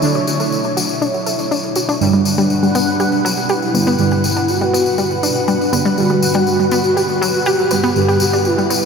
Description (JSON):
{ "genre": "melodic techno", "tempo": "121 BPM", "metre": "4/4", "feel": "straight", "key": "unclear", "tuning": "A4 = 440 Hz", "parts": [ { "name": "lush unison pad", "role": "sustained chords", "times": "0.0-8.9 s", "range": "A3 to F#5", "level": "-22 LUFS", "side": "equal", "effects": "chorus, phaser" }, { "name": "synth brass stab", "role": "stabs", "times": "0.0-8.9 s", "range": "G2 to D4", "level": "-20 LUFS", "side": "right 2 dB", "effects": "chorus, analog delay" }, { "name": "swarming drone", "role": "drone", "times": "0.0-8.9 s", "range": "B2 to F#3", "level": "-30 LUFS", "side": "equal", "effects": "none" }, { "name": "tambourine", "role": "percussion", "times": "0.0-8.9 s", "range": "none", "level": "-23 LUFS", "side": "left 4 dB", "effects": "none" }, { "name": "analog pluck", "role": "arpeggios", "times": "0.2-8.8 s", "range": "F#3 to D5", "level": "-20 LUFS", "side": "left 1 dB", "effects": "chorus, analog delay" }, { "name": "expressive portamento lead", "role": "melody", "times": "2.0-8.9 s", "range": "D4 to G4", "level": "-18 LUFS", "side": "equal", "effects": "ensemble chorus, cassette tape, diffuse ambient delay" } ], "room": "wet huge ambient reverb, RT60 8.1 s", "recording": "dreamy mix soaked in reverb", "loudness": "-13 LUFS", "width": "side -6 dB against mid", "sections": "0.0-8.9 A section", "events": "filter sweep on synth arpeggio sound 0.0-8.9", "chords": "0.0 Dsus2; 2.0 Gmaj7" }